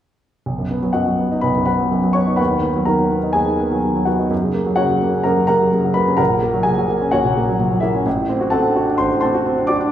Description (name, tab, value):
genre	classical, virtuoso piano study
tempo	127 BPM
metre	4/4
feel	rubato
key	B major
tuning	A4 = 440 Hz
part	warm concert grand piano	solo	0.5-9.9 s	A1 to D6	-15 LUFS	equal	none
room	wet recital hall reverb, RT60 1.5 s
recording	recorded in a church or concert hall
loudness	-15 LUFS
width	side -10 dB against mid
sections	0.5-9.9 A section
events	none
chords	0.5 B; 2.4 B/D#; 4.3 F#; 6.2 F#/A#; 8.1 D7/A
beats	| 0.46 0.95 1.43 1.91 | 2.39 2.87 3.35 3.83 | 4.31 4.79 5.26 5.73 | 6.19 6.66 7.13 7.59 | 8.06 8.53 9.00 9.46 | 9.92